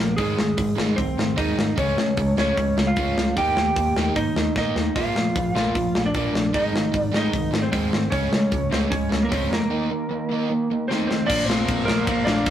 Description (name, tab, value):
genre	punk rock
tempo	151 BPM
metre	4/4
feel	straight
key	unclear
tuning	A4 = 440 Hz
part	lightly driven lead guitar	melody	0.0-12.5 s	Ab3 to G5	-25 LUFS	right 2 dB	none
part	biting overdriven guitar	riff	0.0-11.3 s	Ab2 to Eb4	-27 LUFS	right 5 dB	none
part	crunchy overdriven guitar	riff	0.0-12.5 s	Ab2 to Eb4	-29 LUFS	left 5 dB	none
part	overdriven picked electric bass	bass	0.0-12.5 s	Ab1 to Db3	-30 LUFS	equal	none
part	tight metal drum kit	drums	0.2-12.5 s	crash cymbal, hi-hat, kick drum, ride cymbal, snare drum	-24 LUFS	left 2 dB	none
part	distorted electric guitar	riff	11.3-12.5 s	Bb2 to Bb3	-25 LUFS	left 1 dB	overdrive
room	moderate studio reverb, RT60 0.6 s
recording	rough rehearsal-room recording, warm saturation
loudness	-20 LUFS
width	side -10 dB against mid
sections	0.0-11.3 A section; 11.3-12.5 B section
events	drum fill 4.5-4.9, 10.9-11.3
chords	0.2 Ab; 1.8 Db; 3.4 Eb; 4.9 Bb; 6.5 Ab; 8.1 Db5; 9.7 Eb5; 11.3 Bb